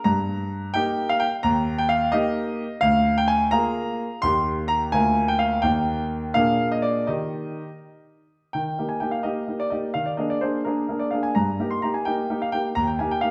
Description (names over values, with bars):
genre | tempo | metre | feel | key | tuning
classical-period piano sonatina | 85 BPM (dotted quarters) | 6/8 | straight | Eb major | A4 = 440 Hz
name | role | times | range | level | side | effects
clear concert grand piano | solo | 0.0-13.3 s | D2 to C6 | -24 LUFS | equal | none
room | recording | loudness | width
wet recital hall reverb, RT60 1.4 s | none | -24 LUFS | mono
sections
0.0-8.5 A section; 8.5-13.3 A section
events
none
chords
0.1 Eb/G; 1.4 Eb; 2.8 Bb7/D; 4.2 Eb; 4.9 Bb7/D; 5.6 Eb; 6.4 Bb7; 7.1 Eb; 10.0 Bb7/Eb; 11.4 Eb/G; 12.8 Eb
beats
| 0.06 0.76 | 1.45 2.13 | 2.83 3.52 | 4.23 4.93 | 5.64 6.35 | 7.08 7.82 | 8.54 9.26 | 9.96 10.67 | 11.37 12.07 | 12.77